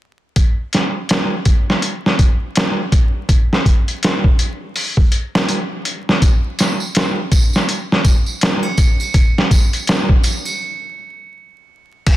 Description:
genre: trip hop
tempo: 82 BPM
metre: 4/4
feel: swing 60% on 16ths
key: none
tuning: none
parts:
  - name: trip hop sampler-style drum kit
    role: drums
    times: 0.4-12.2 s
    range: crash cymbal, hi-hat, kick drum, snare drum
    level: -14 LUFS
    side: equal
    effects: none
  - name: tambourine and triangle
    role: percussion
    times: 6.2-12.2 s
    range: none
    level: -26 LUFS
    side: right 4 dB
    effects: none
room: light reverb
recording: dense, heavily limited modern master, vinyl crackle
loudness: -14 LUFS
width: side -15 dB against mid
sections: 0.4-12.1 A section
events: stop 10.6-12.1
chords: none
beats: | 0.37 1.10 1.83 2.56 | 3.29 4.03 4.76 5.49 | 6.22 6.95 7.68 8.42 | 9.15 9.88 10.61 11.34 | 12.07

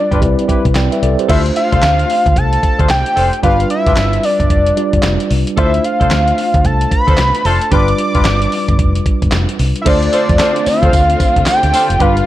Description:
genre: R&B, new jack swing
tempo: 112 BPM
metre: 4/4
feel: swing 61% on 16ths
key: D dorian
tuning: A4 = 440 Hz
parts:
  - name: fat analog lead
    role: melody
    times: 0.0-12.3 s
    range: D5 to D6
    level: -15 LUFS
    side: equal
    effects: chorus
  - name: tine electric piano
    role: accompaniment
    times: 0.0-12.3 s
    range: G3 to G5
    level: -19 LUFS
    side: equal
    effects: medium stereo tremolo
  - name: mellow horn section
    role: stabs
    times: 0.1-12.2 s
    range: C4 to C5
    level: -21 LUFS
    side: left 2 dB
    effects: none
  - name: vintage muted fingered electric bass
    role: bass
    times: 0.1-12.2 s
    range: F1 to C3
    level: -16 LUFS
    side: equal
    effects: none
  - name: clean 12-bit digital drum machine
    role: drums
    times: 0.1-12.3 s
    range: crash cymbal, handclaps, hi-hat, kick drum, snare drum, tambourine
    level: -16 LUFS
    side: equal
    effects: gated reverb
  - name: warm studio string section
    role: sustained chords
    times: 9.9-12.3 s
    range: D3 to F4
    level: -23 LUFS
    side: right 1 dB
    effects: none
room: little or no reverb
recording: none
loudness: -11 LUFS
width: side -14 dB against mid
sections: 0.0-1.3 A section; 1.3-9.9 B section; 9.9-12.3 C section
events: none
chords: 0.2 Cmaj7; 1.3 Dm7; 3.4 G7; 5.6 Dm7; 7.7 G7; 9.9 Dm7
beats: 0.22 0.76 | 1.29 1.83 2.36 2.90 | 3.43 3.97 4.50 5.04 | 5.58 6.11 6.65 7.18 | 7.72 8.26 8.79 9.33 | 9.86 10.40 10.93 11.47 | 12.01

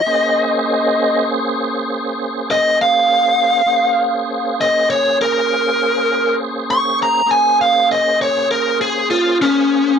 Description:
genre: blues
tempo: 67 BPM (dotted quarters)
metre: 12/8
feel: straight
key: Bb minor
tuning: A4 = 440 Hz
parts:
  - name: biting lead guitar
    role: melody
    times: 0.0-10.0 s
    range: Db4 to Db6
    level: -14 LUFS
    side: equal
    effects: overdrive
  - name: tonewheel organ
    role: sustained chords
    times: 0.1-10.0 s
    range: Bb3 to C5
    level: -21 LUFS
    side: right 2 dB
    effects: slow rotary speaker, chorus vibrato
room: light reverb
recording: none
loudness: -14 LUFS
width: side -7 dB against mid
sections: 0.0-10.0 A section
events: lead electric guitar solo 0.0-10.0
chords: 0.1 Bbm9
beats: | 0.05 0.95 1.85 2.75 | 3.65 4.55 5.46 6.36 | 7.25 8.16 9.06 9.96

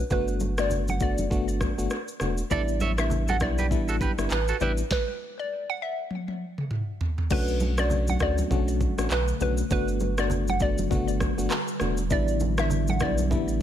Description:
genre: afrobeats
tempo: 100 BPM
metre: 4/4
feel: swing 58% on 16ths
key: B minor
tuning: A4 = 437 Hz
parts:
  - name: warm sub bass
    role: bass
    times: 0.0-13.6 s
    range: E1 to D2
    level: -28 LUFS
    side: equal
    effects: none
  - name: hollow square pluck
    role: melody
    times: 0.1-13.2 s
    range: B4 to F#5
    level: -31 LUFS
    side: right 1 dB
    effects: chorus, ping-pong delay
  - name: FM electric piano with auto-pan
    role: accompaniment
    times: 0.1-13.6 s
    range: G3 to F#4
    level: -30 LUFS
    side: left 3 dB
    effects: none
  - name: afro-pop drum kit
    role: drums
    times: 0.1-13.6 s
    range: crash cymbal, handclaps, kick drum, rim click, shaker, snare drum, toms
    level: -29 LUFS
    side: equal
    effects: none
  - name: congas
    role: percussion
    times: 0.1-13.5 s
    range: none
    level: -34 LUFS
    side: right 3 dB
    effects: none
  - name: clean electric guitar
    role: riff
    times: 2.5-4.7 s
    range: E4 to E5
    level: -33 LUFS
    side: right 5 dB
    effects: ping-pong delay
  - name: glassy FM pad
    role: sustained chords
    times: 8.2-13.6 s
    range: D3 to B4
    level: -34 LUFS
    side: right 2 dB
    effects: ensemble chorus, built-in reverb, phaser
room: little or no reverb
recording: none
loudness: -24 LUFS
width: side -10 dB against mid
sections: 0.0-7.3 A section; 7.3-13.6 B section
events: stop 4.9-7.3; drum fill 6.1-7.3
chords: 0.1 Gmaj7; 2.5 A7sus4; 4.9 N.C.; 7.3 Bm7; 9.7 Gmaj7; 12.1 A7sus4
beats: | 0.11 0.71 1.31 1.91 | 2.51 3.11 3.71 4.31 | 4.91 5.51 6.11 6.71 | 7.31 7.91 8.51 9.11 | 9.71 10.31 10.91 11.51 | 12.11 12.71 13.31

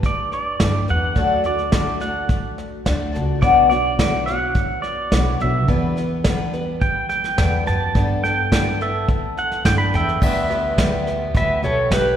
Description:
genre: acoustic folk duo or small band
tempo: 106 BPM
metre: 4/4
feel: straight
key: unclear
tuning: A4 = 439 Hz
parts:
  - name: fingerpicked twelve-string acoustic guitar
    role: accompaniment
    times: 0.0-12.2 s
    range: B2 to D5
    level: -23 LUFS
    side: left 3 dB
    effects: none
  - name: soft brush drum kit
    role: drums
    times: 0.0-12.0 s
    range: crash cymbal, kick drum, snare drum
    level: -22 LUFS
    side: equal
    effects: none
  - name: pedal steel guitar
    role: second line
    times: 0.1-12.2 s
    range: G4 to B5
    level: -24 LUFS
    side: right 2 dB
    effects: none
  - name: upright bass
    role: bass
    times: 0.6-12.2 s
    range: B1 to G2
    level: -24 LUFS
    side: equal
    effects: none
  - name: pedal steel guitar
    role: melody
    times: 10.0-12.2 s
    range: B4 to G5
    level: -21 LUFS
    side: equal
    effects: none
room: wet concert hall reverb, RT60 1.9 s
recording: recorded in a church or concert hall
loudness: -17 LUFS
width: side -9 dB against mid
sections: 0.0-10.2 A section; 10.2-12.2 B section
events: pedal steel guitar solo 0.0-10.2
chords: 0.0 Gadd9; 1.2 D; 3.4 Bmadd9; 5.7 Em7; 8.0 Gadd9; 10.2 Em/D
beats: 0.04 0.61 | 1.18 1.74 2.31 2.87 | 3.44 4.00 4.57 5.14 | 5.70 6.27 6.83 7.40 | 7.96 8.53 9.09 9.65 | 10.22 10.78 11.35 11.91

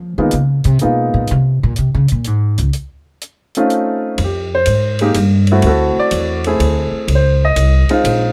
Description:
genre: jazz piano trio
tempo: 124 BPM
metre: 3/4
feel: swing 68% on 8ths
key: unclear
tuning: A4 = 441 Hz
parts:
  - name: upright bass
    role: bass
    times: 0.0-8.3 s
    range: Bb1 to F3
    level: -16 LUFS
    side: equal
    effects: none
  - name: warm baby grand piano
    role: melody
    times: 0.2-1.3, 3.6-8.3 s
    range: Ab3 to Eb5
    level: -18 LUFS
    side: equal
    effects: plate reverb
  - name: compact cocktail drum kit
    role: drums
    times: 0.3-8.2 s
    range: hi-hat, ride cymbal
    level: -28 LUFS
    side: equal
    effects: none
room: light reverb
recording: none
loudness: -15 LUFS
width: mono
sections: 0.0-4.2 A section; 4.2-8.3 A section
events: upright bass solo 0.0-4.2; grand piano solo 4.2-8.3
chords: 0.0 Db13; 1.3 Bbm9; 2.7 F7b13; 4.2 Fmadd9; 5.6 D9; 7.1 Dbmaj9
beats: 0.33 0.82 | 1.30 1.78 2.26 | 2.75 3.23 3.71 | 4.20 4.68 5.17 | 5.65 6.13 6.62 | 7.10 7.59 8.07

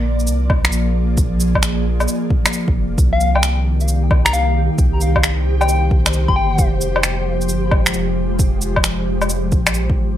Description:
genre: future garage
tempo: 133 BPM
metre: 4/4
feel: swing 66% on 16ths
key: F dorian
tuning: A4 = 441 Hz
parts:
  - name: ethereal airy pad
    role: sustained chords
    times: 0.0-10.2 s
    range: Eb3 to D5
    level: -22 LUFS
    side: equal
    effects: ensemble chorus, built-in reverb, sidechain pumping
  - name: soft dub sub bass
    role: bass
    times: 0.0-10.2 s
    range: F1 to C2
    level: -19 LUFS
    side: equal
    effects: sidechain pumping
  - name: electronic shaker, woodblock and finger snaps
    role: drums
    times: 0.2-9.9 s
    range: none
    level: -20 LUFS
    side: equal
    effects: none
  - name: electronic kick drum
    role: drums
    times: 0.5-10.0 s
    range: none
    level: -17 LUFS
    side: equal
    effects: none
  - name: flickering grainy texture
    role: texture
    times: 3.6-10.2 s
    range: G4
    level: -30 LUFS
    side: right 2 dB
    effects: built-in reverb
  - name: soft struck synth lead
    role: melody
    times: 3.1-6.6 s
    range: F5 to C6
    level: -23 LUFS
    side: left 4 dB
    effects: chorus, dub echo
room: light reverb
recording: none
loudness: -14 LUFS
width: side -11 dB against mid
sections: 0.0-10.2 A section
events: none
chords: 0.0 Bb7; 3.0 Cm7; 6.6 Fmadd9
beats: 0.27 0.72 | 1.18 1.63 2.08 2.53 | 2.98 3.43 3.88 4.33 | 4.79 5.24 5.69 6.14 | 6.59 7.04 7.49 7.94 | 8.39 8.85 9.30 9.75

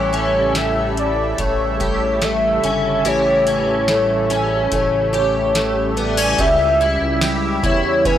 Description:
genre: dream pop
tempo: 72 BPM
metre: 4/4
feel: straight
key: unclear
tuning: A4 = 439 Hz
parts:
  - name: warm velvety synth lead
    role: melody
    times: 0.0-8.2 s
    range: B4 to E5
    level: -18 LUFS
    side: equal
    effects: chorus, analog delay
  - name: lush unison pad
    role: sustained chords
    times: 0.0-8.2 s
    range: C#3 to E5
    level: -24 LUFS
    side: right 1 dB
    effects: chorus, phaser
  - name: picked twelve-string acoustic guitar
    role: arpeggios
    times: 0.0-8.2 s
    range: E3 to G4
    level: -22 LUFS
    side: left 2 dB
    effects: ensemble chorus, analog delay
  - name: fat analog bass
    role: bass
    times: 0.0-8.2 s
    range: G1 to E2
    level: -24 LUFS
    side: right 1 dB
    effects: none
  - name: booming analog drum machine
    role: drums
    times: 0.1-8.2 s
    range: hi-hat, kick drum, ride cymbal, snare drum, tambourine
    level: -23 LUFS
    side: equal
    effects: none
room: light reverb, digital ambience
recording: dry, gritty hardware recording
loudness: -15 LUFS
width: side -10 dB against mid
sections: 0.0-6.4 A section; 6.4-8.2 B section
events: none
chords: 0.0 A7; 6.4 C#dim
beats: 0.56 1.39 2.22 | 3.06 3.89 4.72 5.55 | 6.39 7.22 8.05

